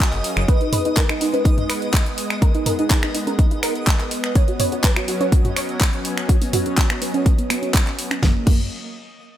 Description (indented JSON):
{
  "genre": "progressive house",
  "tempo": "124 BPM",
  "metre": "4/4",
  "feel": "straight",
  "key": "unclear",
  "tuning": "A4 = 440 Hz",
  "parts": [
    { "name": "lush unison pad", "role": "sustained chords", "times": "0.0-8.5 s", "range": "F#3 to E#5", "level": "-28 LUFS", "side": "left 1 dB", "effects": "chorus, phaser, sidechain pumping" },
    { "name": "soft round pluck", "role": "arpeggios", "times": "0.0-8.7 s", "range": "A#3 to C#5", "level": "-25 LUFS", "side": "right 1 dB", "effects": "ensemble chorus, sidechain pumping, dub echo" },
    { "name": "electronic kick drum", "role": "drums", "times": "0.0-8.6 s", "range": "none", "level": "-17 LUFS", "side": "equal", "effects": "none" },
    { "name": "pop drum kit", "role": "drums", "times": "0.0-8.6 s", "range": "crash cymbal, finger snaps, handclaps, hi-hat, snare drum", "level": "-24 LUFS", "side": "equal", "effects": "none" },
    { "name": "twinkling granular texture", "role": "texture", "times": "0.0-8.2 s", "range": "D#5", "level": "-34 LUFS", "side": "equal", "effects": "built-in reverb, sidechain pumping" },
    { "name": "plucky analog bass", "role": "bass", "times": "0.1-0.5, 8.2-8.7 s", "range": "F#1", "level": "-24 LUFS", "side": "equal", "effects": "sidechain pumping" },
    { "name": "electronic toms and congas", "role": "percussion", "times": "0.7-8.2 s", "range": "none", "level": "-26 LUFS", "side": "right 2 dB", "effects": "sidechain pumping on toms, sidechain pumping on perc" }
  ],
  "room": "light reverb",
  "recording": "none",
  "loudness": "-17 LUFS",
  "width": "side -12 dB against mid",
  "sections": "0.0-8.2 A section; 8.2-9.4 B section",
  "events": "filter sweep on synth pluck 0.0-8.2",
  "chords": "0.5 G#madd9; 4.4 Bsus2; 8.2 F#maj7",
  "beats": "0.00 | 0.48 0.97 1.45 1.94 | 2.42 2.90 3.39 3.87 | 4.36 4.84 5.32 5.81 | 6.29 6.78 7.26 7.74 | 8.23"
}